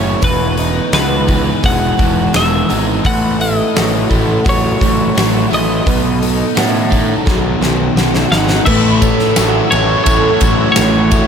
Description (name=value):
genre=rock, shoegaze and dream pop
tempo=85 BPM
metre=4/4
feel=straight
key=A lydian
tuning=A4 = 441 Hz
part: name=twelve-string electric guitar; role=melody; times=0.0-11.3 s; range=B4 to F#5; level=-19 LUFS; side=equal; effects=spring reverb, tape echo
part: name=picked twelve-string acoustic guitar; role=arpeggios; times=0.0-11.3 s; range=F#4 to B4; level=-22 LUFS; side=right 2 dB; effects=ensemble chorus, tape echo
part: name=biting overdriven guitar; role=riff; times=0.0-11.3 s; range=A2 to E4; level=-19 LUFS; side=left 10 dB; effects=lush chorus
part: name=overdriven electric guitar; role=riff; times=0.0-11.3 s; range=E2 to C#5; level=-19 LUFS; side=right 10 dB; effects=reverse reverb
part: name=fuzz picked electric bass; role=bass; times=0.0-11.2 s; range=E1 to A2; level=-18 LUFS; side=equal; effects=overdrive
part: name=huge arena drum kit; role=drums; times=0.2-11.3 s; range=crash cymbal, hi-hat, kick drum, ride cymbal, snare drum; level=-17 LUFS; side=equal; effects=none
part: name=string machine, full ensemble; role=sustained chords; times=8.7-11.3 s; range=C#5 to E6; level=-24 LUFS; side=equal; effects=ensemble chorus
part: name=biting overdriven guitar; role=riff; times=8.7-11.3 s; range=A2 to A3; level=-20 LUFS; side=left 1 dB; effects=none
part: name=tambourine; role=percussion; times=8.7-11.3 s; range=none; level=-30 LUFS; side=left 15 dB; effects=none
room=light reverb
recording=none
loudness=-11 LUFS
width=side -7 dB against mid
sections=0.0-8.7 A section; 8.7-11.3 B section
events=drum fill 7.3-8.7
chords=0.2 Emaj7; 3.0 A6; 5.9 Badd9; 8.7 A6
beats=| 0.23 0.93 1.64 2.34 | 3.05 3.75 4.45 5.16 | 5.86 6.56 7.26 7.96 | 8.67 9.37 10.07 10.77